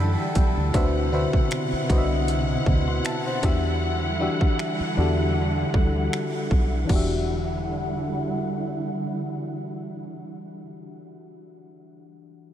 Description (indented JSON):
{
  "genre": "contemporary R&B",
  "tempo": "78 BPM",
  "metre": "4/4",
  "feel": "swing 54% on 16ths",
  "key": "E minor",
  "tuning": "A4 = 439 Hz",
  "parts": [
    { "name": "FM electric piano", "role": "accompaniment", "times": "0.0-12.5 s", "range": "D3 to C6", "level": "-28 LUFS", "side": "left 2 dB", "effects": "chorus, low-pass filter" },
    { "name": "warm symphonic string section", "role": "sustained chords", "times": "0.0-10.7 s", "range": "B2 to F#5", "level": "-29 LUFS", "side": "right 1 dB", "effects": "low-pass filter" },
    { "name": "deep dub fingered electric bass", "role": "bass", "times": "0.0-11.2 s", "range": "E1 to F#2", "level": "-26 LUFS", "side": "equal", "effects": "none" },
    { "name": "synth chime", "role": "texture", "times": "0.0-0.7 s", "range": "E6", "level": "-42 LUFS", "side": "right 2 dB", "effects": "none" },
    { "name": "trap drum kit", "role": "drums", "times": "0.4-7.1 s", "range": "crash cymbal, finger snaps, hi-hat, kick drum", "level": "-26 LUFS", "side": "equal", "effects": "none" }
  ],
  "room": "moderate huge ambient reverb, RT60 6.9 s",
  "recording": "dreamy mix soaked in reverb",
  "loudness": "-21 LUFS",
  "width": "side -10 dB against mid",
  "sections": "0.7-6.9 A section; 6.9-10.0 B section",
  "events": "FM electric piano fill 0.0-0.7",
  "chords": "0.0 Em9; 0.7 D13; 3.4 Em9",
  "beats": "| 0.74 1.51 2.28 3.05 | 3.82 4.59 5.36 6.12 | 6.89 7.66 8.43 9.20"
}